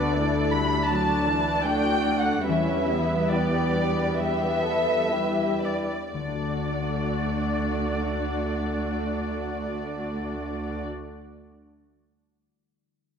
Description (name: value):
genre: cinematic, emotional film score for orchestra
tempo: 58-82 BPM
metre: 4/4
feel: rubato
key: D major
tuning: A4 = 440 Hz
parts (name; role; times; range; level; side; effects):
- muted studio violin section; melody; 0.0-10.9 s; D5 to B5; -28 LUFS; left 1 dB; none
- muted studio violin section; second line; 0.0-10.9 s; D4 to D5; -32 LUFS; left 2 dB; none
- muted studio viola section; accompaniment; 0.0-10.9 s; E3 to E4; -28 LUFS; right 1 dB; none
- concert harp; arpeggios; 0.0-11.1 s; D3 to D5; -31 LUFS; left 6 dB; none
- muted studio cello section; bass; 0.0-10.8 s; D2 to E2; -32 LUFS; right 3 dB; none
room: moderate scoring stage reverb, RT60 1.9 s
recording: none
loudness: -23 LUFS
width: side -7 dB against mid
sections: 0.0-6.1 A section; 6.1-10.1 B section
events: slowing down 0.0-6.1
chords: 0.0 Dsus2; 2.5 Em7; 6.1 D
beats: 0.14 0.89 1.67 | 2.48 3.31 4.19 5.12 | 6.13 7.13 8.12 9.11